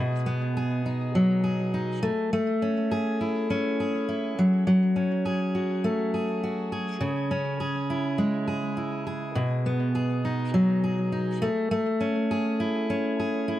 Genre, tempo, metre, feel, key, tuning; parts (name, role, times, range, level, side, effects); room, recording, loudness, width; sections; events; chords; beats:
pop; 102 BPM; 4/4; swing 55% on 16ths; A4 = 444 Hz
fingerpicked steel-string acoustic guitar; solo; 0.0-13.6 s; B2 to G#4; -24 LUFS; equal; tape echo
light reverb; dark, warm production; -24 LUFS; side -13 dB against mid
0.0-13.6 A section
0.0 B6; 2.0 Amaj7; 4.4 F#madd9; 7.0 C#m; 9.4 B6; 11.4 Amaj7
0.56 1.15 1.73 | 2.32 2.91 3.50 4.08 | 4.67 5.26 5.84 6.43 | 7.02 7.61 8.19 8.78 | 9.37 9.96 10.54 11.13 | 11.72 12.30 12.89 13.48